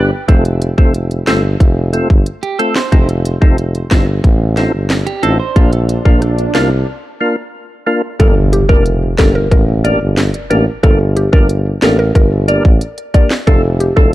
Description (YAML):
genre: dancehall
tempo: 91 BPM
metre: 4/4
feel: straight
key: unclear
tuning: A4 = 441 Hz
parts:
  - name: percussive tonewheel organ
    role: accompaniment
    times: 0.0-14.1 s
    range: A3 to B4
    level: -18 LUFS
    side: left 1 dB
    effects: chorus vibrato, slow rotary speaker, sidechain pumping
  - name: clean electric guitar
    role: arpeggios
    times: 0.0-5.7 s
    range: G4 to C5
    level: -23 LUFS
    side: right 7 dB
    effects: tremolo, tape echo
  - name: mellow tuba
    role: bass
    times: 0.0-14.1 s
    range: E1 to C2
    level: -15 LUFS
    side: equal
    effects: none
  - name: island pop drum kit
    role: drums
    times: 0.3-14.1 s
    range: handclaps, hi-hat, kick drum, rim click, snare drum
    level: -11 LUFS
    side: equal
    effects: none
  - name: swell and impact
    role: sound effects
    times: 5.1-10.8 s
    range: none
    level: -21 LUFS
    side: equal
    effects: none
  - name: mallet-like synth pluck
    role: melody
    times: 8.2-14.1 s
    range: G4 to D5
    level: -17 LUFS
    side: equal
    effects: chorus, tape echo
room: digital ambience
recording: dark, warm production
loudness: -10 LUFS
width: side -16 dB against mid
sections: 0.0-8.2 A section; 8.2-14.1 B section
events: swell 5.1-8.2; break 6.9-8.2; impact 8.2-10.8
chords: 0.3 F; 2.9 F7; 5.6 Bb; 8.2 Gm; 13.5 Dm